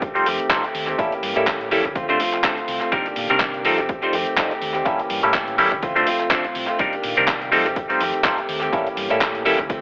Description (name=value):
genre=filtered disco house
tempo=124 BPM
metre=4/4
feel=swing 56% on 16ths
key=unclear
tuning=A4 = 440 Hz
part: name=direct-recorded clean electric guitar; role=riff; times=0.0-9.8 s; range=Eb3 to G4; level=-27 LUFS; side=equal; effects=sidechain pumping, low-pass filter, analog delay
part: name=hollow-body short-scale fingered electric bass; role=bass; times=0.0-9.8 s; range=F1 to C3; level=-41 LUFS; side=equal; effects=sidechain pumping, low-pass filter
part: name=dusty soul sampler-style drum kit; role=drums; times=0.0-9.8 s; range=handclaps, hi-hat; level=-27 LUFS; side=equal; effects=sidechain pumping on hats, analog delay
part: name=electronic kick drum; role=drums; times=0.0-9.8 s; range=none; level=-30 LUFS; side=equal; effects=none
part: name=clav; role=accompaniment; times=0.1-9.6 s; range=Eb3 to C5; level=-24 LUFS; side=equal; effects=phaser, sidechain pumping, low-pass filter, analog delay
room=wet spring reverb, RT60 1.1 s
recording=echo-heavy mix, telephone sound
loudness=-21 LUFS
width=mono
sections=0.0-9.8 A section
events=none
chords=0.0 F9; 1.0 A7b9; 2.0 Dm7; 2.9 Cm9; 3.6 F9; 4.9 A7b9; 5.8 Dm7; 6.8 Cm9; 7.5 F9; 8.7 A7b9